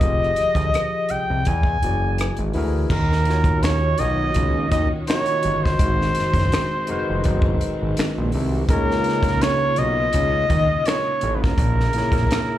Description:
R&B, neo-soul; 83 BPM; 4/4; swing 55% on 16ths; Eb minor; A4 = 440 Hz
clear flugelhorn; melody; 0.0-12.6 s; Bb4 to G#5; -22 LUFS; equal; slapback echo
barky tine electric piano; accompaniment; 0.0-12.6 s; Bb2 to Eb5; -28 LUFS; left 2 dB; overdrive, slapback echo
fat analog bass; bass; 0.0-12.3 s; F1 to E2; -22 LUFS; equal
compact cocktail drum kit; drums; 0.0-12.5 s; crash cymbal, finger snaps, hi-hat, kick drum, rim click, snare drum; -23 LUFS; equal
warm studio string section; sustained chords; 2.9-12.6 s; Db3 to Gb4; -30 LUFS; equal
small room reverb; live gig heard through the venue's PA, club reverb; -18 LUFS; side -13 dB against mid
0.0-2.9 A section; 2.9-12.6 B section
0.0 Fm7; 1.5 E9; 2.9 Ebm7; 5.8 Ab7; 8.7 Db6; 11.6 Bbm7b5

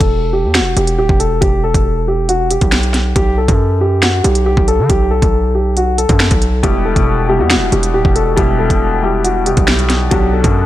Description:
hip hop, drill; 138 BPM; 4/4; half-time; E minor; A4 = 440 Hz
dark concert grand piano; melody; 0.0-10.7 s; F#4 to A4; -16 LUFS; equal; low-pass filter, ping-pong delay
distorted 808-style bass; bass; 0.0-10.7 s; D1 to D3; -15 LUFS; equal; distortion
drill drum kit; drums; 0.0-10.5 s; finger snaps, hi-hat, kick drum, snare drum; -15 LUFS; equal; vintage 12-bit sampler grit
felt-muted upright piano; accompaniment; 6.6-10.7 s; B2 to G4; -17 LUFS; left 5 dB; low-pass filter
digital ambience; -11 LUFS; side -14 dB against mid
0.0-10.7 A section
0.0 Em; 3.2 B5; 6.6 Em; 10.1 Bm

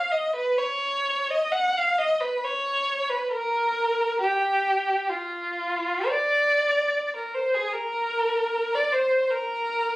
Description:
classical, free, expressive piece for unaccompanied violin; 56-76 BPM; 4/4; rubato; A4 = 440 Hz
warm violin; solo; 0.0-10.0 s; E#4 to F#5; -22 LUFS; equal
light reverb; recorded on a phone in the room, club reverb, compression; -22 LUFS; side -20 dB against mid
0.0-10.0 A section

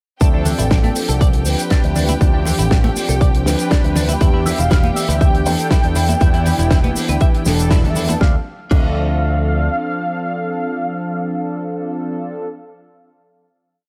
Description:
nu-disco, nu disco; 120 BPM; 4/4; straight; D dorian; A4 = 440 Hz
mellow synth brass; accompaniment; 0.2-12.5 s; E3 to B4; -24 LUFS; equal; chorus, sidechain pumping
rich studio string section; sustained chords; 0.2-8.2 s; G4 to G5; -31 LUFS; equal; sidechain pumping
direct-recorded clean electric guitar; riff; 0.2-8.9 s; D3 to E5; -30 LUFS; equal; analog chorus, vintage 12-bit sampler grit, tape echo
picked electric bass with an envelope filter; bass; 0.2-9.7 s; E1 to E2; -21 LUFS; equal
damped 70s drum kit; drums; 0.2-8.9 s; crash cymbal, hi-hat, shaker, snare drum; -26 LUFS; equal; studio reverb
electronic kick drum; drums; 0.2-8.9 s; -17 LUFS; equal; studio reverb
congas; percussion; 0.5-8.2 s; -27 LUFS; equal
unison lead; melody; 4.5-12.5 s; E5 to G5; -27 LUFS; equal; analog chorus, tape echo
light reverb, small room ambience; -16 LUFS; mono
0.2-8.2 drop; 8.2-12.2 final chord
drop 0.2-8.2; band accent 7.7
0.2 Dm7; 4.2 Em7; 8.2 Dm7

